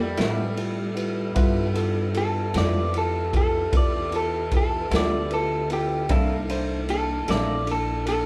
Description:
slow blues; 51 BPM (dotted quarters); 12/8; straight; A4 = 440 Hz
electric guitar through a small old amp; melody; 0.0-8.3 s; G3 to D5; -29 LUFS; equal
barky tine electric piano; accompaniment; 0.0-8.3 s; Bb3 to C5; -33 LUFS; equal
mellow tonewheel organ; sustained chords; 0.0-8.3 s; Bb3 to E5; -35 LUFS; equal; slow rotary speaker
upright bass; bass; 0.0-8.3 s; Bb1 to A2; -31 LUFS; equal
electric guitar through a small old amp; accompaniment; 0.2-7.5 s; G2 to A4; -32 LUFS; equal; harmonic tremolo
raw garage drum kit; drums; 0.2-8.3 s; kick drum, ride cymbal, snare drum; -29 LUFS; equal
moderate large studio reverb, RT60 0.9 s; band playing live in one room; -24 LUFS; mono
0.0-8.3 A section
clean electric guitar solo 0.0-8.3
0.0 G13; 6.1 C13

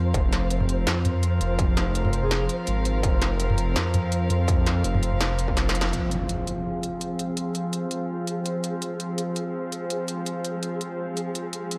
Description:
half-time drum and bass; 166 BPM; 4/4; swing 54% on 16ths, half-time; F minor; A4 = 439 Hz
warm studio string section; sustained chords; 0.0-11.8 s; F3 to F5; -32 LUFS; equal; sidechain pumping, low-pass filter
dark detuned saw bass; bass; 0.0-5.9 s; F1 to F2; -27 LUFS; equal
flickering grainy texture; texture; 0.0-11.8 s; Ab4 to C5; -38 LUFS; equal; built-in reverb
electronic kick drum; drums; 0.1-5.5 s; -26 LUFS; equal; distortion
industrial drum kit; drums; 0.1-11.8 s; hi-hat, snare drum, toms; -30 LUFS; equal
breathy flute-like synth lead; melody; 2.2-2.4 s; Ab4; -35 LUFS; equal; chorus, vintage 12-bit sampler grit, dub echo
impact; sound effects; 5.9-7.4 s; -34 LUFS; equal
light reverb; -25 LUFS; mono
0.0-5.9 A section; 5.9-11.8 B section
drum fill 5.6-5.9; band accent 5.8; impact 5.9-7.4; filter sweep on string section 5.9-11.8
0.0 F5

